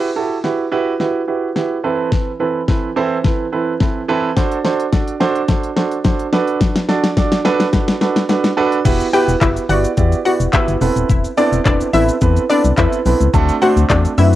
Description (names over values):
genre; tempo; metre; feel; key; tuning
dance-pop; 107 BPM; 4/4; straight; E minor; A4 = 443 Hz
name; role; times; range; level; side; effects
warm grand piano; accompaniment; 0.0-14.4 s; E3 to D5; -17 LUFS; right 4 dB; sidechain pumping
pop drum kit; drums; 0.4-14.4 s; crash cymbal, handclaps, hi-hat, kick drum, shaker, snare drum; -17 LUFS; left 2 dB; cassette tape
organ-like FM bass; bass; 8.9-14.3 s; D#1 to F#2; -16 LUFS; left 2 dB; sidechain pumping
analog pluck; melody; 9.1-14.3 s; D4 to G5; -18 LUFS; left 3 dB; chorus, sidechain pumping, cassette tape, analog delay
room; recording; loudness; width
light reverb, digital ambience; home recording on cassette; -14 LUFS; side -14 dB against mid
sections
0.0-8.9 A section; 8.9-14.4 B section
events
build-up 0.0-8.9; drum fill 0.0-8.9; drop 8.9-14.4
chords
0.0 Emadd9; 1.8 Amadd9/E; 4.4 D7; 6.3 Bm7/D; 8.9 Emadd9; 10.8 Amadd9; 13.3 D7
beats
0.44 1.00 1.56 | 2.12 2.68 3.24 3.81 | 4.37 4.93 5.49 6.05 | 6.61 7.17 7.73 8.29 | 8.85 9.41 9.97 10.53 | 11.09 11.65 12.22 12.78 | 13.34 13.90